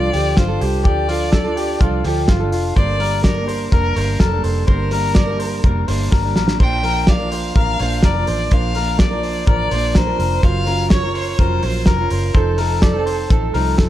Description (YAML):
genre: jangly indie pop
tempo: 125 BPM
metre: 4/4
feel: straight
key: Bb major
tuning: A4 = 440 Hz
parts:
  - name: rich violin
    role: melody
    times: 0.0-13.8 s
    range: A4 to G5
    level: -24 LUFS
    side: right 2 dB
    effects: plate reverb
  - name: fingerpicked plugged-in steel-string acoustic guitar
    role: accompaniment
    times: 0.0-13.9 s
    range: F3 to Bb4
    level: -24 LUFS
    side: right 4 dB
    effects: none
  - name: electric guitar through a small old amp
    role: arpeggios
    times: 0.0-13.9 s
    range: F4 to D5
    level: -24 LUFS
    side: left 5 dB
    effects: none
  - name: vintage muted fingered electric bass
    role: bass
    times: 0.0-13.9 s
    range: F1 to D2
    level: -21 LUFS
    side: equal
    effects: none
  - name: cloth-damped thuddy drum kit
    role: drums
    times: 0.1-13.9 s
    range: crash cymbal, hi-hat, kick drum, snare drum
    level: -18 LUFS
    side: equal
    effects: none
room: light reverb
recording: dark, warm production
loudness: -14 LUFS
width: side -13 dB against mid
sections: 0.0-13.9 A section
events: drum fill 6.1-6.6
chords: 0.0 Dm; 2.8 Gm; 6.6 Bb; 10.4 Gbmaj7; 12.3 F7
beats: 0.37 | 0.85 1.33 1.81 2.29 | 2.77 3.24 3.72 4.20 | 4.68 5.16 5.64 6.12 | 6.60 7.08 7.56 8.04 | 8.52 9.00 9.48 9.96 | 10.43 10.91 11.39 11.87 | 12.35 12.83 13.30 13.78